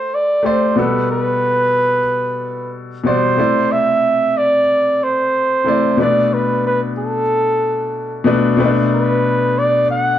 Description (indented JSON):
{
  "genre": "soul",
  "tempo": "92 BPM",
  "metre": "4/4",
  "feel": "straight",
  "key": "unclear",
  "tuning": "A4 = 441 Hz",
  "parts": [
    { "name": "warm flugelhorn", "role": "melody", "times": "0.0-10.2 s", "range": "A4 to F#5", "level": "-16 LUFS", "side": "right 1 dB", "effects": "none" },
    { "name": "clear grand piano", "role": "accompaniment", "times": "0.0-10.2 s", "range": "B2 to D5", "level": "-18 LUFS", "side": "left 2 dB", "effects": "none" }
  ],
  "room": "wet studio reverb, RT60 0.8 s",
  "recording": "band playing live in one room",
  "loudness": "-14 LUFS",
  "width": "side -11 dB against mid",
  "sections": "0.0-8.6 A section; 8.6-10.2 B section",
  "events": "none",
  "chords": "0.0 Am7; 0.8 Gmaj7/B; 3.4 C69; 6.0 Bm7",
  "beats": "0.13 | 0.78 1.43 2.08 2.73 | 3.38 4.03 4.68 5.33 | 5.99 6.64 7.29 7.94 | 8.59 9.24 9.90"
}